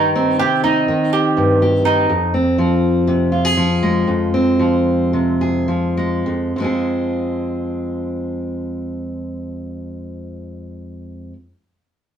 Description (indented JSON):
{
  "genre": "folk",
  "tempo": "99-124 BPM",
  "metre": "4/4",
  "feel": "straight",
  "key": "F minor",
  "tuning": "A4 = 440 Hz",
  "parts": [
    { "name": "fingerpicked steel-string acoustic guitar", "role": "accompaniment", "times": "0.0-11.4 s", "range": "F2 to Ab4", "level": "-17 LUFS", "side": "equal", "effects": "none" },
    { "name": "mandolin", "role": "arpeggios", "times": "0.0-2.3 s", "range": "Eb4 to G4", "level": "-18 LUFS", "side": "right 4 dB", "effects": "none" }
  ],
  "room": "wet studio reverb, RT60 0.6 s",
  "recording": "rough rehearsal-room recording, warm saturation",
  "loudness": "-15 LUFS",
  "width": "side -8 dB against mid",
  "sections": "0.0-6.6 A section; 6.6-11.4 B section",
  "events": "slowing down 2.3-6.6",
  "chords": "0.0 Cm; 2.1 Fm"
}